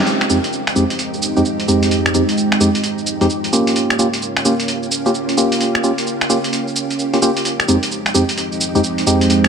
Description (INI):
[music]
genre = UK garage, two-step garage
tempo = 130 BPM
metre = 4/4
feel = swing 63% on 16ths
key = F minor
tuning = A4 = 440 Hz
[part]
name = concert harp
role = melody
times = 0.0-1.4 s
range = none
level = barely audible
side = none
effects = none
[part]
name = soft string machine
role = sustained chords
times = 0.2-9.5 s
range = F2 to G4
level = -23 LUFS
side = right 1 dB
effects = ensemble chorus
[part]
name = percussive organ stab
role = stabs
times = 0.0-9.5 s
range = F2 to G4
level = -17 LUFS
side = right 1 dB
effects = chorus, tape echo
[part]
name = deep dark ambient pad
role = texture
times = 0.1-9.5 s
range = Ab3 to G5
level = -24 LUFS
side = right 1 dB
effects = chorus, built-in reverb
[part]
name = boom bap sampler-style drum kit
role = drums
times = 0.1-9.5 s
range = cabasa, finger snaps, hi-hat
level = -19 LUFS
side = right 1 dB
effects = none
[sound]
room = light reverb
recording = none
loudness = -14 LUFS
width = side -6 dB against mid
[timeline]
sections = 0.1-9.5 A section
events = band accent 0.0; filter sweep on synth stab 0.1-9.5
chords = 0.1 Fm9; 3.5 Gm7b5; 7.5 Fm9